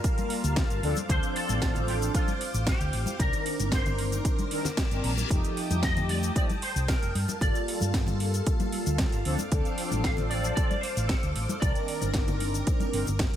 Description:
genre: nu-disco, nu disco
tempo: 114 BPM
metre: 4/4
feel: straight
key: G minor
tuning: A4 = 440 Hz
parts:
  - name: electric guitar with an envelope filter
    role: melody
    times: 0.0-12.1 s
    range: F4 to F5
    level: -35 LUFS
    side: equal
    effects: ensemble chorus, ping-pong delay
  - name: mellow synth brass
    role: accompaniment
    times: 0.0-13.4 s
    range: Eb3 to Bb4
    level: -33 LUFS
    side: equal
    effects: chorus, phaser, sidechain pumping
  - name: string machine, full ensemble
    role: sustained chords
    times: 0.0-13.4 s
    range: Bb4 to Eb6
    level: -38 LUFS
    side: equal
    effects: ensemble chorus, sidechain pumping
  - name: electronic kick drum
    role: drums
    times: 0.0-13.3 s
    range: none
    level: -28 LUFS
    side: equal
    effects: none
  - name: house drum kit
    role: drums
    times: 0.0-13.4 s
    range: hi-hat, shaker, snare drum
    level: -34 LUFS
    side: right 1 dB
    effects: none
  - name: egg shaker and congas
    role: percussion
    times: 0.0-13.4 s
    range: none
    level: -38 LUFS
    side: left 3 dB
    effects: none
  - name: hollow-body short-scale fingered electric bass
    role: bass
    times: 0.4-13.4 s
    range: F1 to G2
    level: -29 LUFS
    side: equal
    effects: sidechain pumping
  - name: reverse cymbal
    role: sound effects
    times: 4.5-5.3 s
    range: none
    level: -40 LUFS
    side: left 6 dB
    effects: none
room: digital ambience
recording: none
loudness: -25 LUFS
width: side -11 dB against mid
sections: 0.0-13.4 A section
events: reverse cymbal 4.5-5.3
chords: 0.0 Gm9; 0.8 Dm7; 3.2 Cm9; 5.3 F9; 7.1 Gm9; 9.2 Dm7; 11.6 Cm9

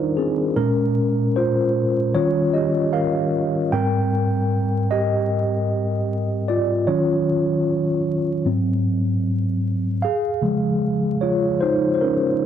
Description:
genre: hip hop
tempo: 76 BPM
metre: 4/4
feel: swing 56% on 16ths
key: unclear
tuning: A4 = 440 Hz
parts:
  - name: mellow tine electric piano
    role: solo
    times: 0.0-12.5 s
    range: Ab2 to G5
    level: -18 LUFS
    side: equal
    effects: medium stereo tremolo
room: wet studio reverb, RT60 0.5 s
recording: dark, warm production, vinyl crackle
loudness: -18 LUFS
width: side -9 dB against mid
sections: 0.0-12.5 A section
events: tine electric piano solo 0.0-12.5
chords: 0.0 Ebmaj9; 0.6 Bbm9; 2.1 Eb9; 3.7 Abmaj9; 6.9 Ebm9; 8.5 Ab7; 10.0 Dbmaj9

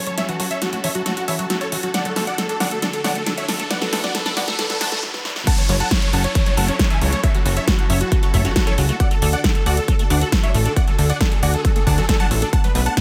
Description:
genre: uplifting trance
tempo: 136 BPM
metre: 4/4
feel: straight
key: unclear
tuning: A4 = 440 Hz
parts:
  - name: dense compressed supersaw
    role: melody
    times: 0.0-13.0 s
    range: F#4 to A5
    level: -28 LUFS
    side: equal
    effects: sidechain pumping, tape echo
  - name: warm concert grand piano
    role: second line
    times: 0.0-13.0 s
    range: F#4 to A5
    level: -33 LUFS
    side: equal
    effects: sidechain pumping, tape echo
  - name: clear symphonic string section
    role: sustained chords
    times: 0.0-13.0 s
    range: D3 to B4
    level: -32 LUFS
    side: equal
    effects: sidechain pumping
  - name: plucky analog bass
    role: bass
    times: 0.0-12.9 s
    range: E1 to D2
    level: -23 LUFS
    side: equal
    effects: sidechain pumping, high-pass filter
  - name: riser and downlifter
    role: sound effects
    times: 1.2-9.0 s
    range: none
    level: -32 LUFS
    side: equal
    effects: none
  - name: liquid acid bass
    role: arpeggios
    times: 0.1-13.0 s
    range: E3 to F#4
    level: -32 LUFS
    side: equal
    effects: phaser, analog chorus, sidechain pumping, tape echo
  - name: big-room dance drum kit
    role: drums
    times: 0.1-13.0 s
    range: crash cymbal, hi-hat, snare drum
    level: -26 LUFS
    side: equal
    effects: none
  - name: electronic kick drum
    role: drums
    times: 5.5-13.0 s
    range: none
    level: -20 LUFS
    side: equal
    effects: none
room: little or no reverb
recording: high-pass filter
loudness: -19 LUFS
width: mono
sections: 0.0-5.5 A section; 5.5-13.0 B section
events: build-up 0.0-5.5; drum fill 0.0-5.0, 5.0-5.5; filter sweep on acid bass 0.0-5.5; filter sweep 0.0-5.5; break 5.0-5.5; drop 5.5-13.0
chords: 0.0 F#m7; 1.9 D; 5.5 F#m7; 9.0 D

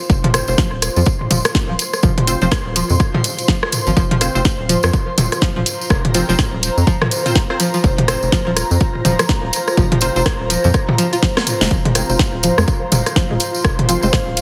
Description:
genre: minimal techno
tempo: 124 BPM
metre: 4/4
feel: swing 60% on 16ths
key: unclear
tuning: A4 = 440 Hz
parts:
  - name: airy breathy pad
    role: texture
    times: 0.0-14.4 s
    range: F4 to C6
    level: -26 LUFS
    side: equal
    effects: chorus, phaser, sidechain pumping
  - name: rubbery square bass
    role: bass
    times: 0.1-14.4 s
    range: Eb1 to F2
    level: -22 LUFS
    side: equal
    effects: sidechain pumping
  - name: electronic kick drum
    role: drums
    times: 0.1-14.2 s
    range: none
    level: -19 LUFS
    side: equal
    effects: none
  - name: tambourine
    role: percussion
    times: 0.1-14.4 s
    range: none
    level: -27 LUFS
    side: equal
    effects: none
  - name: string-like resonator pluck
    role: riff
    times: 0.2-14.1 s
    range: F3 to F4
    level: -26 LUFS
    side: equal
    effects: chorus, sidechain pumping, delay
  - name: house drum kit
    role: drums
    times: 0.2-14.4 s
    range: hi-hat, snare drum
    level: -23 LUFS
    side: equal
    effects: none
  - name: organic electronic drum kit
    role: percussion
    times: 0.2-14.2 s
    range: rim click, toms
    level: -23 LUFS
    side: equal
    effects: delay
  - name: filtered dub chord stab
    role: stabs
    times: 0.3-14.1 s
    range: C4 to C5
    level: -27 LUFS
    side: equal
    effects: chorus, delay
  - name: pulsing gated texture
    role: texture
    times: 12.3-14.4 s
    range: F4 to F5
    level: -33 LUFS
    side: equal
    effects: chorus, built-in reverb, sidechain pumping
room: light reverb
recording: heavily compressed radio sound, multiband compression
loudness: -16 LUFS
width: mono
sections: 0.0-14.4 A section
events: drum fill 11.3-11.7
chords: 0.0 F5

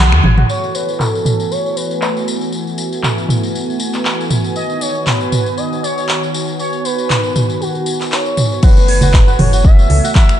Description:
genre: afro house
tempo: 118 BPM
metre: 4/4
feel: swing 55% on 16ths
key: F# dorian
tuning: A4 = 445 Hz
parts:
  - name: kora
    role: arpeggios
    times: 0.0-1.8, 8.6-10.4 s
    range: F#4 to C#5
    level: -23 LUFS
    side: right 2 dB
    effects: sidechain pumping, ping-pong delay
  - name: warm sub bass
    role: bass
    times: 0.0-0.4, 8.6-10.0 s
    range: F#1 to E2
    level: -13 LUFS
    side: equal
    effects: sidechain pumping
  - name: deep house drum kit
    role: drums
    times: 0.1-10.4 s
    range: crash cymbal, finger snaps, handclaps, hi-hat, toms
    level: -17 LUFS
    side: equal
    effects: low-pass filter on snare, low-pass filter on toms, low-pass filter on cymbals, low-pass filter on hats
  - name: congas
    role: percussion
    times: 0.1-0.5, 8.6-10.4 s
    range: none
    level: -19 LUFS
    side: right 2 dB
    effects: none
  - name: expressive portamento lead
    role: melody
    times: 0.5-10.4 s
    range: F#4 to E5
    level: -20 LUFS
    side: equal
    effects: wide subtle chorus, ping-pong delay
  - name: warm analog pad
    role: sustained chords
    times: 0.5-10.4 s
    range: D#3 to G#5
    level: -21 LUFS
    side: right 1 dB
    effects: chorus, sidechain pumping
  - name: tambourine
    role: percussion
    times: 0.5-10.4 s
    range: none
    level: -27 LUFS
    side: left 5 dB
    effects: none
  - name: electronic kick drum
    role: drums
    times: 8.6-10.3 s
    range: none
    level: -8 LUFS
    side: equal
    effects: none
room: light reverb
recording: dark, warm production, nothing above 10.3 kHz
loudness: -12 LUFS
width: side -11 dB against mid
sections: 0.5-8.6 A section; 8.6-10.4 B section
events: break 0.0-0.5; drum fill 0.0-0.5; band accent 0.0; filter sweep on drum 0.5-8.6; drop 8.6-10.4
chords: 0.5 F#m11; 4.6 G#m7; 8.6 F#m11

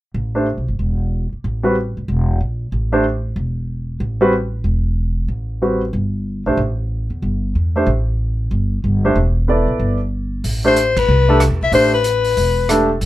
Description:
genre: modal jazz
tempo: 186 BPM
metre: 4/4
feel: swing 64% on 8ths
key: A dorian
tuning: A4 = 440 Hz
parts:
  - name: upright bass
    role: bass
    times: 0.1-13.1 s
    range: E1 to E2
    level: -18 LUFS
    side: equal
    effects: none
  - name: warm grand piano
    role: accompaniment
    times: 0.3-12.9 s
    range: G3 to D5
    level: -16 LUFS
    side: right 1 dB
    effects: none
  - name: vintage drum kit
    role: drums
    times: 10.4-13.1 s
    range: hi-hat, kick drum, ride cymbal, rim click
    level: -26 LUFS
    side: right 2 dB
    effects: none
  - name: breathy soprano saxophone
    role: melody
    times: 10.7-12.9 s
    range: B4 to E5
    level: -15 LUFS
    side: left 5 dB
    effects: none
room: little or no reverb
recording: none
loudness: -16 LUFS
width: side -15 dB against mid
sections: 0.1-10.4 A section; 10.4-13.1 B section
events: band accent 10.9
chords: 0.1 A5; 5.3 C6 (rootless); 10.4 Am9

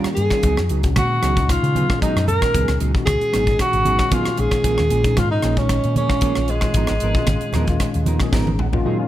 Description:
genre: electric jazz fusion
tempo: 114 BPM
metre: 4/4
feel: straight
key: G# dorian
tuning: A4 = 443 Hz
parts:
  - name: tine electric piano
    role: accompaniment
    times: 0.0-9.1 s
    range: A#2 to A#5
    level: -25 LUFS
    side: left 3 dB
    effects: overdrive, ensemble chorus
  - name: semi-hollow electric guitar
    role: stabs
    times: 0.0-9.0 s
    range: E#3 to A#4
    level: -27 LUFS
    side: right 5 dB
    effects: analog chorus
  - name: fingered electric bass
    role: bass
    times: 0.0-8.8 s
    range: G#1 to C#3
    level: -21 LUFS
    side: equal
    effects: none
  - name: crisp fusion drum kit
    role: drums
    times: 0.0-8.8 s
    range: hi-hat, kick drum, rim click, snare drum, toms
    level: -22 LUFS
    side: equal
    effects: none
  - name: breathy tenor saxophone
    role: melody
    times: 0.1-8.3 s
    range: G#3 to A#4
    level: -21 LUFS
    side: equal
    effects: none
  - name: congas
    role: percussion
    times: 0.4-8.8 s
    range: none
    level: -26 LUFS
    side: right 4 dB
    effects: none
room: studio reverb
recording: none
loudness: -16 LUFS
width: side -13 dB against mid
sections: 0.0-8.9 A section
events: tine electric piano fill 8.1-8.9; drum fill 8.3-8.9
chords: 0.4 C#9sus4; 4.4 A#m7; 6.8 G#m69

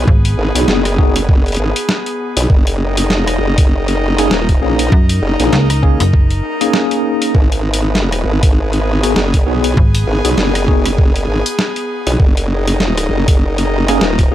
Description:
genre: glitch hop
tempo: 99 BPM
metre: 4/4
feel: swing 57% on 16ths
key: G# minor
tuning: A4 = 440 Hz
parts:
  - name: formant-sweep wobble bass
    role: bass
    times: 0.0-14.3 s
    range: D#1 to B1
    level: -15 LUFS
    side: equal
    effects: chorus
  - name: airy breathy pad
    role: texture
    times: 0.0-14.3 s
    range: B3 to A#4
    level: -21 LUFS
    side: left 1 dB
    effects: chorus, sidechain pumping
  - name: slap-like FM bass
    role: bass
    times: 0.1-0.4, 4.9-10.1 s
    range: F#1 to F#2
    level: -14 LUFS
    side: equal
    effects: none
  - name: electronic kick drum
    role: drums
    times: 0.1-14.3 s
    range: none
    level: -12 LUFS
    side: equal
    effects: small room ambience
  - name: boom bap sampler-style drum kit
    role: drums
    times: 0.2-14.3 s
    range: hi-hat, rim click, snare drum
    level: -18 LUFS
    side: equal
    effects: small room ambience
  - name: tine electric piano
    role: stabs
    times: 0.6-14.3 s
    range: A#3 to G#4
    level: -19 LUFS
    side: equal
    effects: medium stereo tremolo, sidechain pumping, tape echo
room: little or no reverb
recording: none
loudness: -11 LUFS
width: side -12 dB against mid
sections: 0.0-14.3 A section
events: none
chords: 0.0 G#m7; 2.5 F#6; 7.3 G#m7; 12.2 F#6

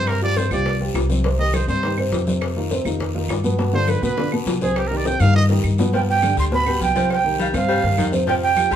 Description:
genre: latin, salsa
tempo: 205 BPM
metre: 4/4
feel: straight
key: C minor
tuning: A4 = 441 Hz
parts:
  - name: bright trumpet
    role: melody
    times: 0.0-5.4 s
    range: G4 to G5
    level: -24 LUFS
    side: right 2 dB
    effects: none
  - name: dark upright piano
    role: accompaniment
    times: 0.0-8.8 s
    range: B2 to C5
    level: -24 LUFS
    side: equal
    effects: none
  - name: upright bass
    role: bass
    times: 0.0-8.8 s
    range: C2 to B2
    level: -22 LUFS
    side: left 1 dB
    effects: none
  - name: bongos and cowbell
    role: percussion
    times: 0.1-8.7 s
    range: none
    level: -29 LUFS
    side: left 3 dB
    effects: none
  - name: claves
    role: percussion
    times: 0.1-8.7 s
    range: none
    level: -37 LUFS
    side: right 2 dB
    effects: none
  - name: congas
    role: percussion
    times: 0.1-8.8 s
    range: none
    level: -28 LUFS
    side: equal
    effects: none
  - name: guiro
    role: percussion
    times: 0.1-8.8 s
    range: none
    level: -36 LUFS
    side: left 5 dB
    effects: none
  - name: clear baritone saxophone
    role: second line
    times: 5.9-8.8 s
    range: Eb3 to G3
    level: -26 LUFS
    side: left 4 dB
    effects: none
  - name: breathy bright jazz flute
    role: melody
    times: 6.0-8.8 s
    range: F5 to C6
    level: -20 LUFS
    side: right 7 dB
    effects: none
room: moderate studio reverb, RT60 0.9 s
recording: band playing live in one room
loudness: -17 LUFS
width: side -9 dB against mid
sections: 0.0-5.9 A section; 5.9-8.8 B section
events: trumpet solo 0.0-5.9; drum fill 5.3-5.9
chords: 0.1 G7sus4; 1.2 Cm; 2.4 Fsus2; 3.6 G7; 4.8 Cm; 5.9 G; 7.1 Cm

